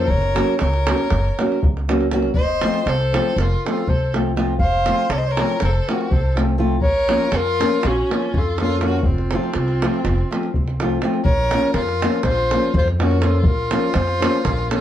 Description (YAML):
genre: balkan folk, Balkan wedding band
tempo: 243 BPM (eighths)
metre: 9/8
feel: straight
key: unclear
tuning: A4 = 443 Hz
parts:
  - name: mellow clarinet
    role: melody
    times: 0.0-14.8 s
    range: F4 to F5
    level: -23 LUFS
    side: left 2 dB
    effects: none
  - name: clear violin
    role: second line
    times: 0.0-14.8 s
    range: C4 to C5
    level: -26 LUFS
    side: equal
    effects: none
  - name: nylon-string guitar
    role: accompaniment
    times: 0.0-14.8 s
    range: F3 to Gb4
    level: -22 LUFS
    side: left 1 dB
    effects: none
  - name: upright bass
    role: bass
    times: 0.0-14.7 s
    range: F1 to F2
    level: -21 LUFS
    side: equal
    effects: none
  - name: davul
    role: percussion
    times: 0.1-14.8 s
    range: none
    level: -23 LUFS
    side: right 1 dB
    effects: none
room: light reverb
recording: dark, warm production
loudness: -17 LUFS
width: side -11 dB against mid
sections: 0.0-11.2 A section; 11.2-14.8 B section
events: speeding up 0.0-14.8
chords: 0.1 Gb; 2.3 F; 6.8 Bbm; 9.0 F; 11.2 Bbm